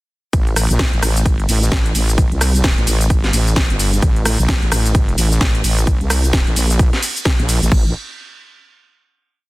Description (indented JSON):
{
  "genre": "bass house",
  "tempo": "130 BPM",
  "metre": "4/4",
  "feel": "swing 60% on 16ths",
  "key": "A phrygian",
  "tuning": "A4 = 440 Hz",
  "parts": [
    { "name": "wobble bass", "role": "bass", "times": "0.3-7.9 s", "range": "G1 to C2", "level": "-16 LUFS", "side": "equal", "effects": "chorus, tube saturation, sidechain pumping" },
    { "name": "house drum kit", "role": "drums", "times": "0.3-7.8 s", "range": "crash cymbal, kick drum", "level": "-16 LUFS", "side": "equal", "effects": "none" },
    { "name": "house drum kit", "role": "drums", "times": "0.3-7.7 s", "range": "cabasa, hi-hat, ride cymbal, rim click, snare drum", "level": "-20 LUFS", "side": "equal", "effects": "none" }
  ],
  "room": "little or no reverb",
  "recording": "dense, heavily limited modern master",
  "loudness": "-13 LUFS",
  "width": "side -20 dB against mid",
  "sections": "0.3-7.7 drop; 7.7-9.5 final note",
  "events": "drop 0.3-7.7",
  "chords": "none"
}